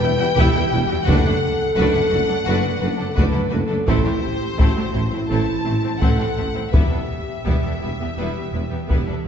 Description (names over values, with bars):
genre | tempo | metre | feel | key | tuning
cinematic, epic orchestral film score | 85 BPM | 4/4 | straight | E minor | A4 = 439 Hz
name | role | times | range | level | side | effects
rich symphonic violin section | melody | 0.0-9.2 s | C5 to A5 | -28 LUFS | left 4 dB | none
clear symphonic violin section | second line | 0.0-9.1 s | B3 to B4 | -30 LUFS | left 3 dB | none
clear symphonic viola section | accompaniment | 0.0-9.3 s | G3 to E4 | -28 LUFS | right 1 dB | none
mellow French horn section | sustained chords | 0.0-9.2 s | E4 to B4 | -25 LUFS | equal | none
mellow tuba | bass | 0.0-9.0 s | E1 to A1 | -26 LUFS | right 1 dB | none
rich symphonic cello section | bass | 0.0-9.3 s | E2 to A2 | -27 LUFS | right 2 dB | none
rich symphonic double bass section | bass | 0.0-9.3 s | E1 to A1 | -26 LUFS | right 2 dB | none
taiko ensemble | drums | 0.4-9.3 s | none | -21 LUFS | left 1 dB | none
room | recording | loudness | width
wet concert hall reverb, RT60 2.1 s | heard from further back in the room, nothing above 7.9 kHz | -17 LUFS | side -8 dB against mid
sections
0.0-9.3 A section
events
none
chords
0.0 Em; 1.1 D6/F#; 3.9 Am; 6.7 Em